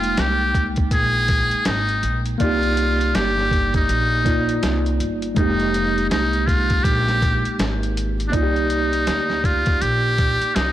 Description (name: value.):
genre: hip hop, jazz-hop.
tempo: 81 BPM.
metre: 4/4.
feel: swing 61% on 16ths.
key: C minor.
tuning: A4 = 440 Hz.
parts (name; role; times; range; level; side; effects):
trumpet with metal mute; melody; 0.0-10.7 s; D4 to Ab4; -21 LUFS; equal; none.
mellow tine electric piano; accompaniment; 0.0-10.7 s; Ab3 to G5; -24 LUFS; right 1 dB; medium stereo tremolo.
upright bass; bass; 0.0-10.7 s; F1 to D2; -24 LUFS; equal; none.
boom bap sampler-style drum kit; drums; 0.0-10.7 s; hi-hat, kick drum, snare drum; -23 LUFS; equal; none.
room: light reverb, studio reverb.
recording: blown-out, overdriven recording, vinyl crackle, overdrive.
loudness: -17 LUFS.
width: side -13 dB against mid.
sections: 0.0-10.7 A section.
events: none.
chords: 0.0 Fm11 (rootless); 2.4 Cm9; 5.4 Fm11; 8.3 Cm9.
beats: 0.18 0.92 1.66 | 2.40 3.14 3.88 4.62 | 5.36 6.11 6.85 7.59 | 8.33 9.07 9.81 10.55.